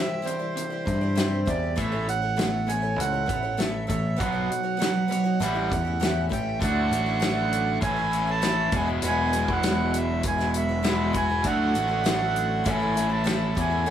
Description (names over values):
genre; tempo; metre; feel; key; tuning
folk rock and heartland rock; 99 BPM; 4/4; straight; unclear; A4 = 441 Hz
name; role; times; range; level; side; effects
accordion; melody; 0.0-13.9 s; C5 to A5; -28 LUFS; right 5 dB; none
picked twelve-string acoustic guitar; accompaniment; 0.0-13.9 s; E2 to D5; -31 LUFS; left 4 dB; none
raw garage guitar; riff; 0.0-13.9 s; E2 to F#4; -30 LUFS; equal; overdrive
natural country drum kit; drums; 0.3-13.7 s; hi-hat, kick drum, snare drum; -29 LUFS; left 1 dB; none
picked electric bass; bass; 0.9-13.9 s; E1 to G2; -28 LUFS; equal; none
warm baby grand piano; accompaniment; 11.4-13.9 s; F#4 to F#5; -37 LUFS; left 1 dB; none
room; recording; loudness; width
light reverb; none; -22 LUFS; side -10 dB against mid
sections
0.0-6.6 A section; 6.6-13.9 B section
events
none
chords
0.0 Cadd9; 1.8 Aadd9; 4.2 Badd9; 5.4 A7; 6.6 Dadd9; 7.8 A; 8.7 Eadd9; 11.4 Dadd9; 12.7 A